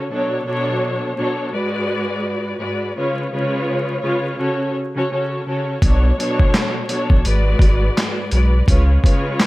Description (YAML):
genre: hip hop, boom-bap hip-hop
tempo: 84 BPM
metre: 4/4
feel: swing 59% on 16ths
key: unclear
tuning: A4 = 439 Hz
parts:
  - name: dark studio string section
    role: accompaniment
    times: 0.0-9.5 s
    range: G#2 to D5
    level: -20 LUFS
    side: equal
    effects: cassette tape, high-pass filter, low-pass filter
  - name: saturated sub bass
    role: bass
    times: 5.8-9.0 s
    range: G#1 to C#2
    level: -15 LUFS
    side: equal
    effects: none
  - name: boom bap sampler-style drum kit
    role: drums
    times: 5.8-9.5 s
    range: handclaps, hi-hat, kick drum, snare drum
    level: -16 LUFS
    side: equal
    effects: overdrive
room: digital ambience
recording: vinyl crackle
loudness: -16 LUFS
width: side -19 dB against mid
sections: 0.0-5.8 A section; 5.8-9.5 B section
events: none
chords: 0.1 Bm7; 1.5 G#m7b5; 3.0 C#7; 4.4 F#m/C#; 5.8 Bm7; 7.2 G#m7b5; 8.7 C#7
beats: | 0.11 0.82 1.54 2.25 | 2.96 3.68 4.39 5.11 | 5.82 6.54 7.25 7.96 | 8.68 9.39